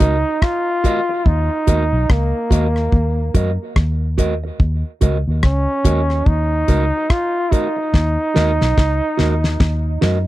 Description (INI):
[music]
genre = roots reggae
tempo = 72 BPM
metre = 4/4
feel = swing 60% on 16ths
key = Eb minor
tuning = A4 = 440 Hz
[part]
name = bright trombone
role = melody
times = 0.0-10.3 s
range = Bb3 to F4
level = -20 LUFS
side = equal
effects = tape echo
[part]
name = mellow electric guitar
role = accompaniment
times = 0.0-10.2 s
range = Gb4 to Eb5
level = -25 LUFS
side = right 4 dB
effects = tape echo
[part]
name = vintage muted fingered electric bass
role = bass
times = 0.0-10.2 s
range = Cb2 to Gb2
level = -18 LUFS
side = equal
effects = none
[part]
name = damped 70s drum kit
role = drums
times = 0.0-10.3 s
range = hi-hat, kick drum, rim click, snare drum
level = -15 LUFS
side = equal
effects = none
[sound]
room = little or no reverb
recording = dry, close 1970s-style studio recording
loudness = -15 LUFS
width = side -16 dB against mid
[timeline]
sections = 0.0-10.3 A section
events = drum fill 7.9-10.3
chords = 0.0 Ebm